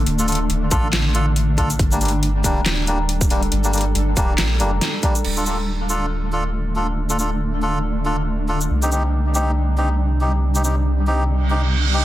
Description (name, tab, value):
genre	deep dubstep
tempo	139 BPM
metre	4/4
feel	swing 57% on 16ths, half-time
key	D phrygian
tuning	A4 = 442 Hz
part	granular cloud pad	sustained chords	0.0-12.0 s	C3 to A4	-24 LUFS	equal	built-in reverb
part	soft dub sub bass	bass	0.0-12.0 s	D1 to C2	-20 LUFS	equal	tube saturation
part	dubstep drum kit	drums	0.1-10.7 s	crash cymbal, handclaps, hi-hat, shaker, snare drum	-24 LUFS	equal	overdrive
part	melodica	stabs	0.2-12.0 s	G3 to A4	-24 LUFS	left 1 dB	dub echo
part	electronic kick drum	drums	0.7-5.1 s	none	-20 LUFS	equal	overdrive
part	reverse cymbal	sound effects	11.4-12.0 s	none	-23 LUFS	right 7 dB	none
room	light reverb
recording	dense, heavily limited modern master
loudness	-17 LUFS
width	side -14 dB against mid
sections	0.0-5.2 A section; 5.2-12.0 B section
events	reverse cymbal 11.4-12.0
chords	0.0 Dm; 1.8 Gm; 5.2 Dm; 8.7 Cm